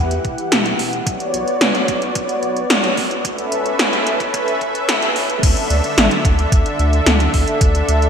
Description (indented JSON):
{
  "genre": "synthwave",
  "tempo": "110 BPM",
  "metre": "4/4",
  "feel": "straight",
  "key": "unclear",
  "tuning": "A4 = 440 Hz",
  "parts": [
    { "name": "lush unison pad", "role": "sustained chords", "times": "0.0-8.1 s", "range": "D3 to F#5", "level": "-19 LUFS", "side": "equal", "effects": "chorus, sidechain pumping" },
    { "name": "round analog bass", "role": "bass", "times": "0.0-8.1 s", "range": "E1 to E2", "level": "-20 LUFS", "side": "equal", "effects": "none" },
    { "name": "80s electronic pad drums", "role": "drums", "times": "0.1-8.1 s", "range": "crash cymbal, hi-hat, snare drum", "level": "-18 LUFS", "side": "equal", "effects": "gated reverb" },
    { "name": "electronic kick drum", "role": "drums", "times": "0.2-7.7 s", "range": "none", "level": "-18 LUFS", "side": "equal", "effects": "none" }
  ],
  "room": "wet lush hall reverb, RT60 2.6 s",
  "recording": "bright 1980s-style digital production, high-pass filter, faint mains hum",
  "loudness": "-14 LUFS",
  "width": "side -7 dB against mid",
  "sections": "0.0-5.4 A section; 5.4-8.1 B section",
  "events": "filter sweep on analog synth pad 0.0-5.4",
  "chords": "0.0 Emadd9; 1.1 Bmadd9; 3.2 Aadd9/C#; 5.4 Dsus2"
}